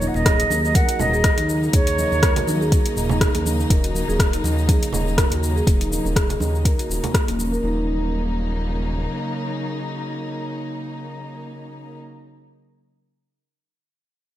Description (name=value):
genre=afro house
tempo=122 BPM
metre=4/4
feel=swing 56% on 16ths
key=Eb minor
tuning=A4 = 440 Hz
part: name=concert flute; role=melody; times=0.0-2.7 s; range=Db5 to Gb5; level=-23 LUFS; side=right 2 dB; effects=ping-pong delay
part: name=dark chamber string section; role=sustained chords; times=0.0-12.0 s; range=Db3 to Eb4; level=-28 LUFS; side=equal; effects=sidechain pumping, low-pass filter
part: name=marimba with medium mallets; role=arpeggios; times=0.0-7.9 s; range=Bb3 to Eb5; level=-27 LUFS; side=right 1 dB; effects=sidechain pumping, low-pass filter, ping-pong delay
part: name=smooth synth bass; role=bass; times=0.0-9.1 s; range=Eb1 to Eb2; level=-24 LUFS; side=equal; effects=sidechain pumping
part: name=deep house drum kit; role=drums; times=0.0-7.6 s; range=hi-hat, rim click, shaker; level=-26 LUFS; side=left 1 dB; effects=overdrive
part: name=congas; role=percussion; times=0.0-7.5 s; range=none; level=-30 LUFS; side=right 3 dB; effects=none
part: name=electronic kick drum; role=drums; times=0.3-7.3 s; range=none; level=-19 LUFS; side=equal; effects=none
room=light reverb, small room ambience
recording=bright 1980s-style digital production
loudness=-18 LUFS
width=side -13 dB against mid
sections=0.0-7.6 A section; 7.6-11.6 B section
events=none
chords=0.0 Ebm7